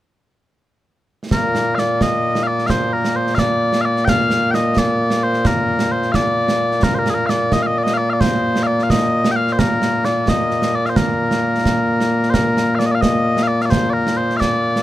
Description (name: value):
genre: scottish traditional, Scottish pipe music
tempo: 87 BPM (dotted quarters)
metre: 6/8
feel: straight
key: Bb major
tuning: A4 = 439 Hz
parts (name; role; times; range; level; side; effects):
- mellow small bagpipes; melody; 1.3-14.8 s; Bb2 to G5; -16 LUFS; left 1 dB; none
- concert snare drum and concert bass drum; drums; 1.3-14.8 s; none; -21 LUFS; right 2 dB; none
room: little or no reverb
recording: none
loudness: -15 LUFS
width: side -14 dB against mid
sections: 1.3-12.3 A section; 12.3-14.8 A section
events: none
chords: none